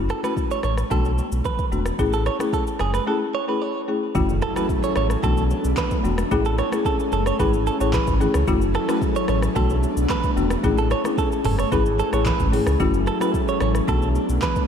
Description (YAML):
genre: afrobeats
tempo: 111 BPM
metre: 4/4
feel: straight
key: F# minor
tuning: A4 = 440 Hz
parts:
  - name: folk marimba with medium mallets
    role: accompaniment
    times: 0.0-14.6 s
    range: A3 to G#4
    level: -25 LUFS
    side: left 5 dB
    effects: none
  - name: sub bass with octave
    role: bass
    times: 0.0-14.4 s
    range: E1 to C#2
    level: -23 LUFS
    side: equal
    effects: none
  - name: direct-recorded clean electric guitar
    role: riff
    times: 0.1-14.6 s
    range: G#4 to C#5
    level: -26 LUFS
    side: right 7 dB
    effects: spring reverb, ping-pong delay
  - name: afro-pop drum kit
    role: drums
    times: 0.1-14.7 s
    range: handclaps, hi-hat, kick drum, rim click, shaker, toms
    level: -26 LUFS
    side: equal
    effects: none
  - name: congas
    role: percussion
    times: 0.2-14.7 s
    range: none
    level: -34 LUFS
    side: right 2 dB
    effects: none
  - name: airy breathy pad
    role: sustained chords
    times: 4.2-14.7 s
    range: F#3 to A4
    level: -27 LUFS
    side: equal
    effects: chorus
  - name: impact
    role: sound effects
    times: 4.2-6.3 s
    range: none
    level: -35 LUFS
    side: equal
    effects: none
room: moderate church reverb, RT60 3.3 s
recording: dreamy mix soaked in reverb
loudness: -19 LUFS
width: side -8 dB against mid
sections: 0.0-4.2 A section; 4.2-14.7 B section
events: impact 4.2-6.3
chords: 0.0 F#m7; 0.9 Bm7; 2.0 F#m7; 5.2 Bm7; 6.3 F#m7; 9.6 Bm7; 10.6 F#m7; 13.9 Bm7